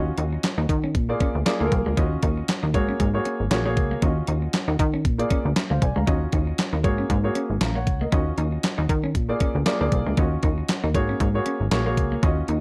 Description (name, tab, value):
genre	early-eighties boogie funk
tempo	117 BPM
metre	4/4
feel	swing 56% on 16ths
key	Eb minor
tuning	A4 = 439 Hz
part	warm baby grand piano	accompaniment	0.0-12.6 s	Bb3 to Bb5	-30 LUFS	equal	none
part	plucky analog bass	bass	0.0-12.6 s	Ab1 to Eb3	-26 LUFS	equal	none
part	clean electric guitar	riff	0.2-12.6 s	Ab3 to Eb4	-35 LUFS	equal	lush chorus
part	crisp 8-bit digital drum machine	drums	0.2-12.6 s	handclaps, hi-hat, kick drum, snare drum	-27 LUFS	equal	none
room	light reverb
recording	dark, warm production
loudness	-23 LUFS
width	mono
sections	0.0-12.6 A section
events	grand piano fill 1.2-2.0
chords	0.0 Ebm9; 0.9 Bb7; 2.0 Ebm9; 2.7 Ab9sus4; 4.0 Ebm9; 5.0 Bb7; 6.1 Ebm9; 6.8 Ab9sus4; 8.1 Ebm9; 9.2 Bb7; 10.2 Ebm9; 10.9 Ab9sus4